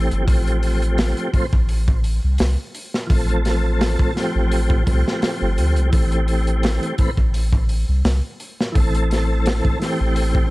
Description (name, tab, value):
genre	trip hop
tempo	85 BPM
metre	4/4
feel	swing 54% on 16ths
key	unclear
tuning	A4 = 440 Hz
part	tonewheel organ	accompaniment	0.0-10.5 s	E3 to C5	-23 LUFS	equal	chorus vibrato, fast rotary speaker, tremolo, tape echo
part	soft dub sub bass	bass	0.0-10.5 s	G1 to D2	-19 LUFS	equal	none
part	crunchy breakbeat drum kit	drums	0.1-10.5 s	hi-hat, kick drum, snare drum	-20 LUFS	equal	none
room	small room ambience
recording	dark, warm production, vinyl crackle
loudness	-17 LUFS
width	side -20 dB against mid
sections	0.0-10.5 A section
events	none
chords	0.3 Fadd9/A; 5.9 Am7